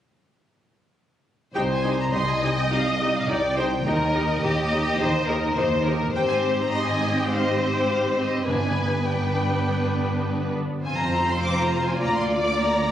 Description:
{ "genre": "quick classical-period movement for symphony orchestra", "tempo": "103 BPM", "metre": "4/4", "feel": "straight", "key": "C minor", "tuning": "A4 = 440 Hz", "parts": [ { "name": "warm studio viola section", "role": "accompaniment", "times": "1.5-12.9 s", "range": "Bb3 to G4", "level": "-28 LUFS", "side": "right 1 dB", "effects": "none" }, { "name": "rich studio cello section", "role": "bass", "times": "1.5-12.9 s", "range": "C2 to Ab2", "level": "-29 LUFS", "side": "right 2 dB", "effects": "none" }, { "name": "rich studio violin section", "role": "melody", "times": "1.6-12.9 s", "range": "Eb5 to D6", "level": "-28 LUFS", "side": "left 1 dB", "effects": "none" }, { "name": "rich studio violin section", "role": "second line", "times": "1.6-12.9 s", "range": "G4 to Eb5", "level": "-25 LUFS", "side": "left 2 dB", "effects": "none" }, { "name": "dark studio double bass section", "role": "bass", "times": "1.6-12.9 s", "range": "F1 to Eb2", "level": "-28 LUFS", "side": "equal", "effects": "none" }, { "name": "timpani", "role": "percussion", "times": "8.5-9.3 s", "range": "G2", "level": "-33 LUFS", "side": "left 1 dB", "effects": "none" } ], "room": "wet scoring stage reverb, RT60 1.6 s", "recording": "recorded on a phone in the room, club reverb, compression", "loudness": "-21 LUFS", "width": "side -11 dB against mid", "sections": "1.6-12.9 A section", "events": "none", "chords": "1.6 Cm; 3.9 Eb; 6.1 Abmaj7; 8.5 G; 10.8 F5; 12.0 Bb/D", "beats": "| 1.55 2.13 2.71 3.28 | 3.86 4.43 5.00 5.57 | 6.14 6.71 7.29 7.88 | 8.47 9.07 9.67 10.25 | 10.84 11.43 12.01 12.60" }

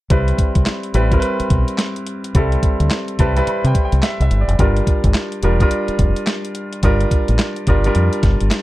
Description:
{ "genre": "R&B, new jack swing", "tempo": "107 BPM", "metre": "4/4", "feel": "swing 62% on 16ths", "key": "C major", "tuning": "A4 = 444 Hz", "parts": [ { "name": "clear baby grand piano", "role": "accompaniment", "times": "0.1-8.6 s", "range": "G3 to B5", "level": "-20 LUFS", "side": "equal", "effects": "none" }, { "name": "deep dub fingered electric bass", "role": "bass", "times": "0.1-8.5 s", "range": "E1 to C3", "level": "-16 LUFS", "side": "equal", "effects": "tube saturation" }, { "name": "clean 12-bit digital drum machine", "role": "drums", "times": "0.1-8.6 s", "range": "handclaps, hi-hat, kick drum, snare drum", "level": "-18 LUFS", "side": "equal", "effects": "none" } ], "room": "little or no reverb", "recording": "dry, close 1970s-style studio recording", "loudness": "-14 LUFS", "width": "side -17 dB against mid", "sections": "0.1-8.6 A section", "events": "grand piano fill 2.9-4.6", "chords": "0.1 Cmaj7; 4.6 Gm7", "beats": "| 0.10 0.66 1.22 1.78 | 2.35 2.91 3.47 4.03 | 4.59 5.15 5.71 6.27 | 6.83 7.39 7.95 8.51" }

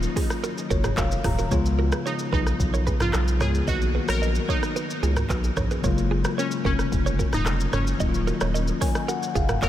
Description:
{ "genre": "afrobeats", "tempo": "111 BPM", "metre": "4/4", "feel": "straight", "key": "unclear", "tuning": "A4 = 437 Hz", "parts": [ { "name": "glassy wavetable pluck", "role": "melody", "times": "0.0-9.7 s", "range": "Db4 to Bb4", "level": "-31 LUFS", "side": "equal", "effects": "chorus, diffuse ambient delay" }, { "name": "bell-like tine electric piano", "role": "accompaniment", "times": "0.0-9.7 s", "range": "Db3 to Bb5", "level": "-28 LUFS", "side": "left 5 dB", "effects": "none" }, { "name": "saturated sub bass", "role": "bass", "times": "0.0-9.7 s", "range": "Eb1 to Db2", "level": "-25 LUFS", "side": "equal", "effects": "none" }, { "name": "afro-pop drum kit", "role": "drums", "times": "0.0-9.7 s", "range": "handclaps, hi-hat, kick drum, rim click, shaker, toms", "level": "-27 LUFS", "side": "equal", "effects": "none" }, { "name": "direct-recorded clean electric guitar", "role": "riff", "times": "0.2-9.7 s", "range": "F4 to Eb5", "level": "-32 LUFS", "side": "right 7 dB", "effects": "diffuse ambient delay" } ], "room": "moderate huge ambient reverb, RT60 7.8 s", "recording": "dreamy mix soaked in reverb", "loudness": "-21 LUFS", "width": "side -12 dB against mid", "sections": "0.0-9.7 A section", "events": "tine electric piano fill 0.4-1.5, 8.5-9.7", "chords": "0.0 Ebm9; 1.5 Db7; 3.7 Cbmaj7; 5.8 Gbmaj9", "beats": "0.43 0.97 | 1.51 2.06 2.60 3.14 | 3.68 4.22 4.76 5.30 | 5.84 6.38 6.92 7.46 | 8.00 8.54 9.08 9.62" }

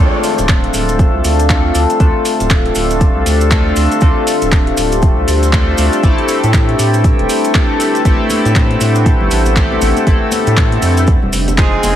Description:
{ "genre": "deep house", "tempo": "119 BPM", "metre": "4/4", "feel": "swing 60% on 16ths", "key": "D minor", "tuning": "A4 = 440 Hz", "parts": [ { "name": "warbly tape-like pad", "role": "sustained chords", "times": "0.1-12.0 s", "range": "Ab4 to G5", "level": "-22 LUFS", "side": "left 3 dB", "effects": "chorus, built-in reverb, phaser, sidechain pumping" }, { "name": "chorused polysynth", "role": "stabs", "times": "0.0-12.0 s", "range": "Ab3 to A4", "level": "-16 LUFS", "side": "left 2 dB", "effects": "tape echo" }, { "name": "round analog bass", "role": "bass", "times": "0.0-11.9 s", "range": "D1 to A2", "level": "-16 LUFS", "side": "equal", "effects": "sidechain pumping" }, { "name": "deep dark ambient pad", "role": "texture", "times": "0.0-12.0 s", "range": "C4 to C5", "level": "-23 LUFS", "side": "right 1 dB", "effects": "chorus, built-in reverb, sidechain pumping" }, { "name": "deep house drum kit", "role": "drums", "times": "0.2-12.0 s", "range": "handclaps, hi-hat", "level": "-21 LUFS", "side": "equal", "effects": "small room ambience" }, { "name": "maracas", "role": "percussion", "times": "0.2-12.0 s", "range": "none", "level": "-26 LUFS", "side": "right 3 dB", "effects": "none" }, { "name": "electronic kick drum", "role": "drums", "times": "0.5-11.7 s", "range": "none", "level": "-12 LUFS", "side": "equal", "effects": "small room ambience" }, { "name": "congas", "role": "percussion", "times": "8.3-12.0 s", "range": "none", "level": "-25 LUFS", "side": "left 3 dB", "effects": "none" } ], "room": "light reverb", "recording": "heavily compressed radio sound", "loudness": "-10 LUFS", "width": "side -11 dB against mid", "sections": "0.0-12.0 A section", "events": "none", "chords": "0.0 Dm7; 6.0 Am7; 11.1 Fm7", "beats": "0.49 0.99 1.50 | 2.00 2.50 3.01 3.51 | 4.02 4.52 5.03 5.53 | 6.03 6.54 7.04 7.55 | 8.05 8.55 9.06 9.56 | 10.07 10.57 11.08 11.58" }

